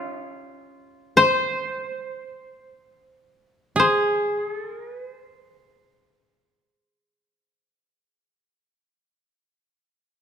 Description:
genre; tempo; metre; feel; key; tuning
japanese traditional, Japanese chamber music; free time; none; none; unclear; A4 = 438 Hz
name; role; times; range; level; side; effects
koto; melody; 0.0-8.1 s; F4 to C5; -19 LUFS; left 4 dB; none
koto; second line; 0.0-8.1 s; F4 to C5; -24 LUFS; right 2 dB; none
room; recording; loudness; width
moderate scoring stage reverb, RT60 1.8 s; none; -20 LUFS; side -8 dB against mid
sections
0.0-3.8 A section; 3.8-9.9 B section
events
slowing down 0.0-3.8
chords
none

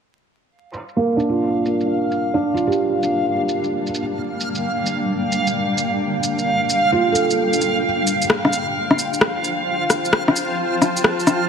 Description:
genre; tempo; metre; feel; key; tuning
future garage; 131 BPM; 4/4; swing 66% on 16ths; G minor; A4 = 440 Hz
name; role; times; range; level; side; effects
granular cloud pad; sustained chords; 2.1-11.5 s; G3 to A5; -24 LUFS; left 1 dB; built-in reverb
backwards swelling texture; texture; 1.4-11.5 s; F5; -22 LUFS; right 1 dB; built-in reverb
electronic shaker and rim click; drums; 0.7-11.4 s; none; -19 LUFS; left 1 dB; overdrive, low-pass filter on perc, low-pass filter on snare
felt-muted upright piano; accompaniment; 1.0-8.2 s; Bb3 to A4; -21 LUFS; right 2 dB; vintage 12-bit sampler grit, low-pass filter, ping-pong delay
room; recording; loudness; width
moderate lush hall reverb, RT60 2.0 s; vinyl crackle; -17 LUFS; side -6 dB against mid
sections
0.5-11.5 A section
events
fade-in on ambient pad 0.5-11.5; filter sweep on drum 0.5-11.5; filter sweep on felt piano 0.5-11.5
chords
0.5 Gm; 7.8 Fadd9

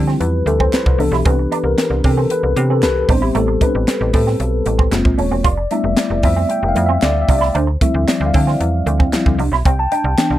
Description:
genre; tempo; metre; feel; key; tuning
polished 1980s jazz-funk pop; 114 BPM; 4/4; straight; C major; A4 = 441 Hz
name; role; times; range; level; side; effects
mellow tine electric piano; accompaniment; 0.0-10.4 s; E3 to A5; -18 LUFS; left 2 dB; analog chorus
electric guitar with an envelope filter; riff; 0.0-10.2 s; A3 to F4; -23 LUFS; right 7 dB; ensemble chorus
slap-like FM bass; bass; 0.0-10.4 s; Eb1 to D3; -18 LUFS; right 1 dB; none
crisp fusion drum kit; drums; 0.1-10.3 s; hi-hat, kick drum, snare drum; -17 LUFS; equal; none
group handclap; percussion; 0.7-10.3 s; none; -32 LUFS; right 4 dB; none
room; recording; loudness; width
light reverb; dry, close 1970s-style studio recording; -13 LUFS; side -13 dB against mid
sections
0.0-10.4 A section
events
tine electric piano solo 0.0-10.4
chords
0.0 Dm11; 1.0 Cmaj7; 3.1 Am7; 4.9 F#maj9#11; 5.5 Fmaj9#11; 7.6 Dm11; 9.4 Cmaj7

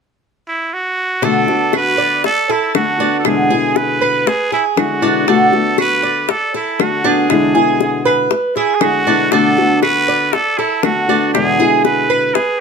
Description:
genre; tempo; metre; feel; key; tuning
latin, Cuban son and guajira; 119 BPM; 4/4; straight; unclear; A4 = 440 Hz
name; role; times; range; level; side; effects
trumpet with straight mute; melody; 0.5-12.6 s; E4 to B4; -17 LUFS; right 2 dB; plate reverb
nylon-string guitar; accompaniment; 1.2-12.4 s; E2 to F#4; -16 LUFS; left 4 dB; none
Cuban tres; arpeggios; 1.2-12.6 s; D4 to D5; -17 LUFS; right 6 dB; none
bongos; percussion; 1.2-12.6 s; none; -19 LUFS; left 10 dB; none
claves; percussion; 1.7-12.4 s; none; -24 LUFS; right 11 dB; none
room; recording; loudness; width
moderate studio reverb, RT60 0.7 s; close, detailed microphones; -12 LUFS; side -5 dB against mid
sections
0.0-1.2 A section; 1.2-12.6 B section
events
none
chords
0.0 N.C.; 1.2 Bm7; 3.3 E7; 5.3 Bm7; 7.3 E7; 9.3 Bm7; 11.3 E7

